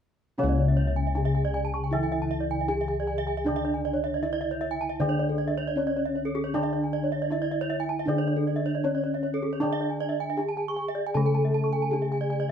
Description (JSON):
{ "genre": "Balinese gamelan", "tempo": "78 BPM", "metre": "4/4", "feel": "straight", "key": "C# pelog", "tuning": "A4 = 440 Hz", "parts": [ { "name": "gamelan-type bronze metallophone", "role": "melody", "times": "0.4-12.5 s", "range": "C#4 to A4-20c", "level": "-30 LUFS", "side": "right 1 dB", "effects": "none" }, { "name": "gamelan-type bronze metallophone", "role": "accompaniment", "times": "0.4-12.5 s", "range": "C#3 to A3-20c", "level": "-35 LUFS", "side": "equal", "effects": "none" }, { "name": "gamelan-type bronze metallophone", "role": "arpeggios", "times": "0.4-12.5 s", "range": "G#4-30c to C#6", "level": "-33 LUFS", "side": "left 3 dB", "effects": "none" }, { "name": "gamelan-type bossed gongs", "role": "bass", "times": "0.4-12.5 s", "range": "C#2 to D4+20c", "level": "-29 LUFS", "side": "left 2 dB", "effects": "none" }, { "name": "gamelan-type bronze metallophone", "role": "arpeggios", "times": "0.5-12.5 s", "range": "A4-20c to C#6", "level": "-32 LUFS", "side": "right 6 dB", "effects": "none" } ], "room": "wet studio ambience, RT60 0.5 s", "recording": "band playing live in one room", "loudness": "-24 LUFS", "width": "side -8 dB against mid", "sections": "0.4-12.5 A section", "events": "none", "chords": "none", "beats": "| 0.39 1.16 1.93 2.69 | 3.46 4.23 5.00 5.77 | 6.54 7.31 8.08 8.85 | 9.62 10.39 11.15 11.93" }